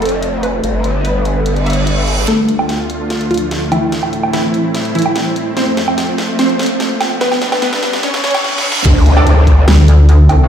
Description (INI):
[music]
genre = heavy wobble dubstep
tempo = 146 BPM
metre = 4/4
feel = half-time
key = D dorian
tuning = A4 = 444 Hz
[part]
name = wide unison pluck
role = melody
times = 0.0-8.4 s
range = E3 to E5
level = -18 LUFS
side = equal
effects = ping-pong delay
[part]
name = supersaw pad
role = sustained chords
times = 0.0-10.5 s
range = D2 to A4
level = -19 LUFS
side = equal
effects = sidechain pumping, low-pass filter
[part]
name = growl bass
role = bass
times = 0.0-2.3, 8.9-9.7 s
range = F1 to D2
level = -13 LUFS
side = equal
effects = chorus, overdrive
[part]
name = dubstep drum kit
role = drums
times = 0.0-10.4 s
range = crash cymbal, hi-hat, snare drum, woodblock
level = -19 LUFS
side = right 2 dB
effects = high-pass filter on hats, studio reverb, high-pass filter on cymbals, high-pass filter on snare, high-pass filter on perc
[part]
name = reverse cymbal, riser and impact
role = sound effects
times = 1.6-10.5 s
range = none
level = -20 LUFS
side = equal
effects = none
[part]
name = electronic kick drum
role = drums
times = 8.9-9.6 s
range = none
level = -10 LUFS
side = equal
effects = studio reverb
[part]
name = orchestra-hit-like synth stab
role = stabs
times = 9.2 s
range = D4 to D5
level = -19 LUFS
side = right 1 dB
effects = built-in reverb, vintage 12-bit sampler grit, ping-pong delay
[part]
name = pulsing pluck wobble bass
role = bass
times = 9.7-10.5 s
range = C2 to D2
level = -5 LUFS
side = equal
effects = chorus, overdrive
[sound]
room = light reverb, digital ambience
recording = played on a big sound system in a bare room, large studio reverb, high-pass filter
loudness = -11 LUFS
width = side -9 dB against mid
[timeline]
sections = 0.0-2.3 A section; 2.3-8.9 B section; 8.9-10.5 C section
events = reverse cymbal 1.6-2.3, 8.0-8.9; build-up 2.3-8.9; drum fill 2.3-8.4, 8.4-8.9; riser 2.3-8.9; filter sweep 2.3-8.9; drop 8.9-10.5; impact 8.9-10.5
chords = 0.0 F; 0.6 G; 2.3 Dm; 3.9 Am; 5.6 F; 7.2 G; 8.0 A7; 8.9 Dm